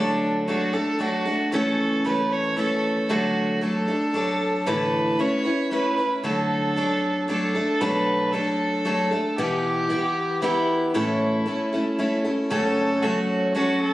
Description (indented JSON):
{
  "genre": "acoustic folk duo or small band",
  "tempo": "115 BPM",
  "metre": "3/4",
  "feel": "straight",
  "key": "D major",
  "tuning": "A4 = 440 Hz",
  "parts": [
    { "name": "clear fiddle", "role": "second line", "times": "0.0-13.9 s", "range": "D4 to C#5", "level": "-26 LUFS", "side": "right 2 dB", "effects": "none" },
    { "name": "picked steel-string acoustic guitar", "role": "accompaniment", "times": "0.0-13.9 s", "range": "F#2 to B4", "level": "-22 LUFS", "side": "equal", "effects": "none" }
  ],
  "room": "light reverb",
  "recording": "recorded on a phone in the room, studio reverb",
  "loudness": "-21 LUFS",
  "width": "side -16 dB against mid",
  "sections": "0.0-12.5 A section; 12.5-13.9 B section",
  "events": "none",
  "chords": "0.0 D; 1.5 A/C#; 3.1 D; 4.7 Asus4; 5.2 Aadd9; 6.2 D; 7.8 Bm7; 9.4 Em/B; 10.9 A; 12.5 F#m"
}